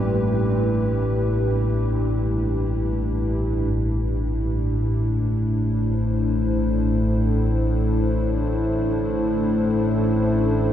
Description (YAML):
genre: dark ambient drone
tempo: free time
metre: none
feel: none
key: A minor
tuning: A4 = 437 Hz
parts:
  - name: dark analog pad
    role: sustained chords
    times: 0.0-10.7 s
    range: A3 to C5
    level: -24 LUFS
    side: equal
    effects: chorus
  - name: carillon bells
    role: arpeggios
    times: 0.0-4.7 s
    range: G3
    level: -35 LUFS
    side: right 2 dB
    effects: none
  - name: analog drone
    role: drone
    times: 0.0-10.7 s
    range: A1 to A2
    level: -22 LUFS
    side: equal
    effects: chorus
room: wet huge ambient reverb, RT60 8.5 s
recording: dark, warm production, nothing above 7.9 kHz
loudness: -20 LUFS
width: side -10 dB against mid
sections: 0.0-3.7 A section; 3.7-10.7 B section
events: none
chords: 0.0 C/A (rootless); 3.7 Am